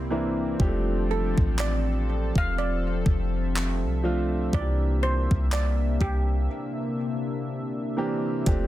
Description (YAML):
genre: contemporary R&B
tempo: 61 BPM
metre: 4/4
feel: swing 58% on 16ths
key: unclear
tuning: A4 = 440 Hz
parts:
  - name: steel pan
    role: melody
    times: 0.0-7.9 s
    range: G4 to F5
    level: -32 LUFS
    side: right 3 dB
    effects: digital delay
  - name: warm grand piano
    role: accompaniment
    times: 0.0-8.7 s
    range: E3 to G4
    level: -30 LUFS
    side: equal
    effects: none
  - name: chorused pulse-width pad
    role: sustained chords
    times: 0.0-8.7 s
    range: C3 to E5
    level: -31 LUFS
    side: left 2 dB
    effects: none
  - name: soft 808-style bass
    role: bass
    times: 0.0-8.7 s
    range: E1 to C2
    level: -26 LUFS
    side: equal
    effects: none
  - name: clean 12-bit digital drum machine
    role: drums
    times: 0.6-8.7 s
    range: handclaps, hi-hat, kick drum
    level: -26 LUFS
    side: equal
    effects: none
room: little or no reverb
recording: dense, heavily limited modern master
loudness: -23 LUFS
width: side -14 dB against mid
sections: 0.0-8.7 A section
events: break 0.0-8.5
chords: 0.0 C9; 0.6 F6; 4.5 C9